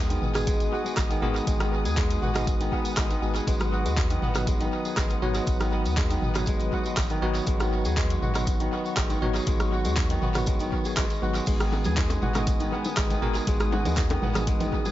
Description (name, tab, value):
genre	afro house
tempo	120 BPM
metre	4/4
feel	straight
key	G# minor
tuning	A4 = 440 Hz
part	muted studio string section	sustained chords	0.0-14.9 s	B4 to D#6	-36 LUFS	left 2 dB	sidechain pumping
part	kora	arpeggios	0.0-14.9 s	D#3 to G#4	-32 LUFS	right 1 dB	vintage 12-bit sampler grit, sidechain pumping, tape echo
part	bell-like tine electric piano	stabs	0.0-14.9 s	F#3 to C#5	-31 LUFS	left 1 dB	fast stereo tremolo, sidechain pumping, tape echo
part	warm sub bass	bass	0.0-14.7 s	G#1 to D#2	-29 LUFS	equal	tube saturation, sidechain pumping
part	deep house drum kit	drums	0.1-14.7 s	crash cymbal, handclaps, hi-hat, rim click, toms	-32 LUFS	equal	tape echo
part	tambourine	percussion	0.1-14.9 s	none	-41 LUFS	right 2 dB	tape echo
part	electronic kick drum	drums	0.5-14.8 s	none	-27 LUFS	equal	none
part	congas	percussion	11.5-14.8 s	none	-35 LUFS	right 3 dB	none
part	bongos	percussion	11.7-14.9 s	none	-36 LUFS	left 4 dB	none
room	studio reverb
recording	echo-heavy mix, nothing above 7.6 kHz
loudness	-23 LUFS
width	side -14 dB against mid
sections	0.0-14.9 A section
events	none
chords	0.0 G#m7; 3.5 B/G#; 11.5 G#m7